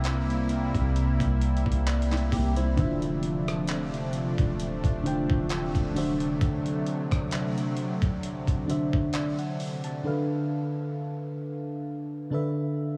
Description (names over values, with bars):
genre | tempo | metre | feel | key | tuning
contemporary R&B | 66 BPM | 4/4 | swing 54% on 16ths | unclear | A4 = 441 Hz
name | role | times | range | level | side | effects
mellow FM electric piano | accompaniment | 0.0-13.0 s | C3 to A5 | -32 LUFS | equal | chorus
warm analog pad | sustained chords | 0.0-10.0 s | C3 to E4 | -34 LUFS | equal | chorus, tremolo
soft 808-style bass | bass | 0.0-6.4 s | D1 to C2 | -32 LUFS | equal | none
dusty soul sampler-style drum kit | drums | 0.0-10.0 s | handclaps, hi-hat, kick drum, rim click | -33 LUFS | equal | none
flamenco guitar | arpeggios | 2.1-3.0 s | G3 to G4 | -39 LUFS | equal | analog chorus, tape echo
room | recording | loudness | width
moderate huge ambient reverb, RT60 7.4 s | dreamy mix soaked in reverb, small room reverb | -28 LUFS | mono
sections
0.0-13.0 A section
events
none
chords
0.0 C7; 2.8 Dm7; 6.0 D7; 10.0 Dm69